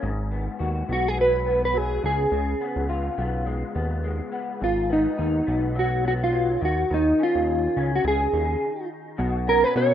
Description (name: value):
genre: indie pop, bedroom pop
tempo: 105 BPM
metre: 4/4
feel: swing 55% on 16ths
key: unclear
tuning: A4 = 441 Hz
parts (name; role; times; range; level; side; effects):
- electric guitar through a small old amp; accompaniment; 0.0-9.9 s; G#2 to F#4; -31 LUFS; left 4 dB; ensemble chorus, warbly pitch drift
- fat analog bass; bass; 0.0-9.9 s; G#1 to B2; -26 LUFS; equal; none
- mellow electric guitar; melody; 0.9-9.9 s; D#4 to C#5; -22 LUFS; equal; analog chorus, slapback echo
room: light reverb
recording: rough home demo mix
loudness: -21 LUFS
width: side -10 dB against mid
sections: 0.0-9.2 A section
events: stop 8.6-9.2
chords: 0.0 G#m7; 2.0 C#7; 4.6 G#m7; 6.6 C#sus2; 9.2 Bmaj7sus2